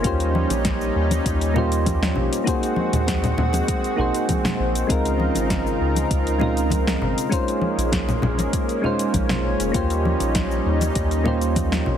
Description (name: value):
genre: sunset chillout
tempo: 99 BPM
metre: 4/4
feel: straight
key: unclear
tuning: A4 = 438 Hz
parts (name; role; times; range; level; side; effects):
- soft electric-piano-like synth keys; accompaniment; 0.0-12.0 s; Ab3 to C5; -25 LUFS; moving between left 4 dB and right 4 dB; chorus, auto-pan, digital delay
- lush unison pad; sustained chords; 0.0-12.0 s; Db3 to Bb4; -25 LUFS; equal; chorus
- round analog bass; bass; 0.0-12.0 s; F1 to Eb2; -24 LUFS; equal; none
- deep house drum kit; drums; 0.0-11.8 s; cabasa, congas, hi-hat, snare drum; -26 LUFS; left 1 dB; overdrive
- electronic kick drum; drums; 0.0-11.7 s; none; -25 LUFS; equal; overdrive
- congas; percussion; 0.3-12.0 s; none; -28 LUFS; left 2 dB; none
room: moderate lush hall reverb, RT60 2.3 s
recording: heavily compressed radio sound, multiband compression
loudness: -19 LUFS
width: side -9 dB against mid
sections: 0.0-12.0 A section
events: none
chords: 0.0 Eb13; 2.5 Ab9/Eb; 4.9 Dbmaj13; 7.3 Bbm11; 9.7 Eb13